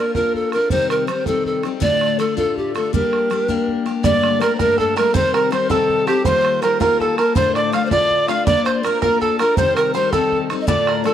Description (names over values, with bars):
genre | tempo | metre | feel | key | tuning
celtic folk, Celtic jig | 108 BPM (dotted quarters) | 6/8 | straight | G minor | A4 = 440 Hz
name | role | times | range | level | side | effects
breathy bright polished pan flute | melody | 0.0-11.1 s | G4 to F5 | -18 LUFS | right 1 dB | tape echo
picked steel-string acoustic guitar | accompaniment | 0.0-11.1 s | D2 to Bb4 | -22 LUFS | left 9 dB | none
bodhran | percussion | 0.1-11.1 s | none | -24 LUFS | right 4 dB | none
bluegrass banjo | second line | 4.0-11.1 s | G4 to F5 | -26 LUFS | right 9 dB | none
wooden whistle | second line | 4.0-11.1 s | A5 to F6 | -27 LUFS | left 1 dB | none
room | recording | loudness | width
small room reverb | dry, close 1970s-style studio recording | -15 LUFS | side -10 dB against mid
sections
0.0-4.0 A section; 4.0-11.1 A section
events
none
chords
0.0 Bb; 0.7 Cm; 1.8 Dm; 2.9 Gm; 4.0 Gmadd9; 5.1 Cm; 6.3 Ebadd9; 7.4 Dm; 8.5 Bb; 9.6 Cm